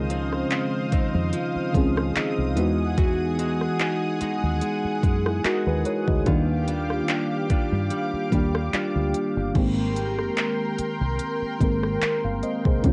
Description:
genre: contemporary R&B.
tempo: 73 BPM.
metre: 4/4.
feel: swing 54% on 16ths.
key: Ab major.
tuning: A4 = 440 Hz.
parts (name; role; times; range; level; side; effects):
mellow FM electric piano; accompaniment; 0.0-12.9 s; Eb3 to F5; -29 LUFS; equal; chorus, cassette tape.
lush unison pad; sustained chords; 0.0-12.9 s; G4 to Eb6; -34 LUFS; equal; chorus, cassette tape.
direct-recorded clean electric guitar; arpeggios; 0.0-10.1 s; Db3 to F#4; -31 LUFS; equal; cassette tape, analog delay.
deep dub fingered electric bass; bass; 0.0-12.9 s; G1 to G2; -30 LUFS; equal; none.
smooth R&B drum kit; drums; 0.1-12.9 s; crash cymbal, handclaps, hi-hat, kick drum, rim click; -27 LUFS; equal; cassette tape.
room: moderate studio reverb, RT60 0.5 s.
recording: home recording on cassette.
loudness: -24 LUFS.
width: mono.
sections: 0.0-9.6 A section; 9.6-12.9 A section.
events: none.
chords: 0.0 Dbmaj9; 2.6 Emaj9; 6.3 Ebmaj9; 9.6 Abmaj9.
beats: 0.51 1.33 2.15 | 2.98 3.80 4.62 5.44 | 6.26 7.09 7.91 8.73 | 9.55 10.37 11.20 12.02 | 12.84.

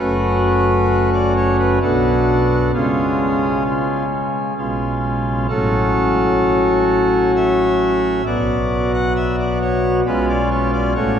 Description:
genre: classical, chorale-style piece for pipe organ.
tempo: 65 BPM.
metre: 3/4.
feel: straight.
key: F# minor.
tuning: A4 = 436 Hz.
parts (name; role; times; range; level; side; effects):
pipe organ, cornet; solo; 0.0-11.2 s; F#1 to F#5; -15 LUFS; equal; none.
room: wet cathedral reverb, RT60 5.1 s.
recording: recorded in a church or concert hall.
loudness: -15 LUFS.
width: side -8 dB against mid.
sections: 0.0-11.2 A section.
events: none.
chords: 0.0 F#m; 1.8 Bm; 2.7 C#; 4.6 C#7/B; 5.5 F#m/A; 8.3 B5; 10.1 C#7/B.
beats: 0.90 1.82 | 2.74 3.66 4.57 | 5.49 6.42 7.36 | 8.26 9.16 10.06 | 10.96.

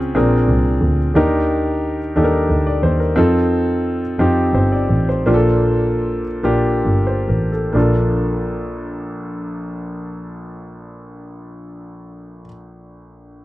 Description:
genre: slow gospel.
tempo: 43-60 BPM (dotted quarters).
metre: 6/8.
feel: straight.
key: Bb major.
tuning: A4 = 440 Hz.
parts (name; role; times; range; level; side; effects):
warm grand piano; accompaniment; 0.0-13.4 s; Bb1 to Eb5; -18 LUFS; equal; none.
warm double bass; bass; 0.0-12.4 s; G1 to F2; -19 LUFS; equal; none.
room: little or no reverb.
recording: dry, close 1970s-style studio recording.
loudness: -15 LUFS.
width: side -16 dB against mid.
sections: 0.0-7.7 A section; 7.7-13.3 B section.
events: slowing down 3.2-7.7.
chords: 0.2 Bb9; 1.2 Ebmaj7; 3.2 F7; 5.3 Bbmaj7.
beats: 0.15 | 1.16 2.17 | 3.17 4.20 | 5.27 6.44 | 7.75 9.15 | 10.55 11.95.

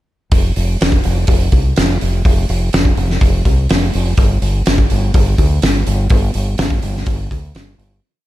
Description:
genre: rock, shoegaze and dream pop.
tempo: 124 BPM.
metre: 4/4.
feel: straight.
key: unclear.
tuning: A4 = 440 Hz.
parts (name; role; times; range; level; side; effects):
growling fingered electric bass; bass; 0.3-8.0 s; F1 to D2; -16 LUFS; equal; overdrive.
loose indie drum kit; drums; 0.3-7.9 s; hi-hat, kick drum, snare drum; -14 LUFS; equal; none.
room: little or no reverb.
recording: none.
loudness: -12 LUFS.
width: side -15 dB against mid.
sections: 0.3-8.0 A section.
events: fade-out 6.1-8.0.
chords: none.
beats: | 0.31 0.80 1.28 1.76 | 2.24 2.73 3.21 3.69 | 4.18 4.66 5.14 5.62 | 6.11 6.59 7.07 7.56.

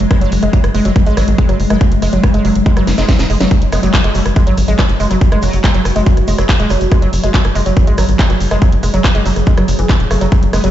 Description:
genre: psychedelic trance.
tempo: 141 BPM.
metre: 4/4.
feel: straight.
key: unclear.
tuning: A4 = 443 Hz.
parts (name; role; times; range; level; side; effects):
swarming drone; sustained chords; 0.0-10.7 s; F#3 to G#4; -19 LUFS; left 1 dB; built-in reverb, sidechain pumping.
tight sequencer bass; bass; 0.0-10.7 s; E1 to G#1; -14 LUFS; equal; none.
garage drum kit; drums; 0.0-10.7 s; handclaps, hi-hat, rim click, snare drum; -21 LUFS; right 1 dB; none.
woody wave-folded pluck; riff; 0.1-10.7 s; E3 to A3; -19 LUFS; right 1 dB; chorus, auto-pan, sidechain pumping, dub echo.
electronic kick drum; drums; 0.1-10.4 s; none; -11 LUFS; equal; none.
tube shaker; percussion; 3.5-10.7 s; none; -34 LUFS; right 1 dB; none.
metallic wobble bass; second line; 3.7-5.7, 10.5-10.7 s; F#3 to B3; -30 LUFS; left 2 dB; distortion, analog chorus, cassette tape, sidechain pumping, high-pass filter, digital delay.
room: light reverb, digital ambience.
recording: played on a big sound system in a bare room, large studio reverb, nothing above 7.8 kHz.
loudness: -10 LUFS.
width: side -12 dB against mid.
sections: 0.0-10.7 A section.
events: drum fill 2.9-3.5.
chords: 0.0 Eadd9 (rootless).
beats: | 0.11 0.53 0.96 1.38 | 1.81 2.23 2.66 3.09 | 3.51 3.94 4.36 4.79 | 5.21 5.64 6.07 6.49 | 6.92 7.34 7.77 8.19 | 8.62 9.04 9.47 9.89 | 10.32.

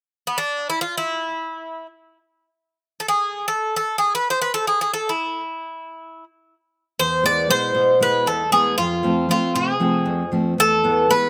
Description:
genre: greek folk, Greek bouzouki band.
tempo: free time.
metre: none.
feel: none.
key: E phrygian dominant.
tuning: A4 = 436 Hz.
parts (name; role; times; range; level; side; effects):
Greek bouzouki; melody; 0.3-11.3 s; B3 to D5; -21 LUFS; equal; none.
fingerpicked steel-string acoustic guitar; accompaniment; 7.0-11.3 s; E2 to E4; -24 LUFS; equal; slapback echo.
room: little or no reverb.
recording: recorded outdoors, with no room sound.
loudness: -21 LUFS.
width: mono.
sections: 0.0-7.0 A section; 7.0-11.3 B section.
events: none.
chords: 0.0 N.C.; 7.0 E; 8.8 F; 10.6 E.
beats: free time.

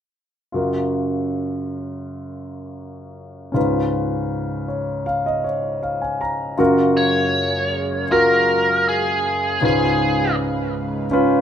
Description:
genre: pop.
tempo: 79 BPM.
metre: 4/4.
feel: straight.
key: F# major.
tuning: A4 = 440 Hz.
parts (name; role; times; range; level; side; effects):
warm concert grand piano; accompaniment; 0.5-11.4 s; C#2 to A#5; -19 LUFS; left 1 dB; none.
chorused pulse-width pad; sustained chords; 6.6-11.4 s; F#2 to E#5; -29 LUFS; right 2 dB; none.
biting lead guitar; melody; 7.0-10.4 s; G#4 to C#5; -19 LUFS; right 1 dB; overdrive.
room: moderate studio reverb, RT60 0.6 s.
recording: rough home demo mix.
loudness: -18 LUFS.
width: side -9 dB against mid.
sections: 0.6-6.6 A section; 6.6-11.4 B section.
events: grand piano fill 4.3-6.6.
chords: 0.6 F#maj7; 3.6 C#7; 6.6 F#maj7; 9.6 C#7.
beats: | 0.55 1.31 2.06 2.81 | 3.56 4.31 5.07 5.83 | 6.60 7.36 8.12 8.88 | 9.63 10.38 11.14.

